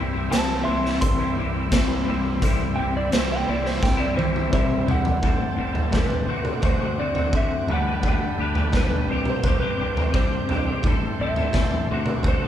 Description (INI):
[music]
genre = psychedelic rock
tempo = 86 BPM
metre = 4/4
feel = straight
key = unclear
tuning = A4 = 440 Hz
[part]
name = combo organ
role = sustained chords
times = 0.0-12.5 s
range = G3 to D6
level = -34 LUFS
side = right 4 dB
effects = none
[part]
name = clean electric guitar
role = riff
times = 0.0-12.5 s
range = A2 to B4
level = -26 LUFS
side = left 5 dB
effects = rotary speaker
[part]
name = fuzz fingered electric bass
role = bass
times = 0.0-12.5 s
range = A1 to E2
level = -30 LUFS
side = equal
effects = overdrive
[part]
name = electric slide guitar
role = melody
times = 0.3-12.5 s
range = B4 to C6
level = -28 LUFS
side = right 2 dB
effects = none
[part]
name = raw garage drum kit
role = drums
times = 0.3-12.4 s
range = hi-hat, kick drum, snare drum, toms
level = -23 LUFS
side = equal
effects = none
[sound]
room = light reverb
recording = band playing live in one room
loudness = -20 LUFS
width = side -10 dB against mid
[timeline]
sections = 0.0-5.2 A section; 5.2-12.5 B section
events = electric slide guitar solo 0.0-5.2; drum fill 3.8-5.2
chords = 0.0 C; 5.2 Am7; 6.3 D7; 7.7 Gadd9/D; 9.1 Csus2; 10.8 Am7; 11.9 D7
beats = 0.33 1.02 1.72 | 2.42 3.12 3.82 4.52 | 5.22 5.93 6.63 7.33 | 8.03 8.74 9.44 10.14 | 10.85 11.55 12.25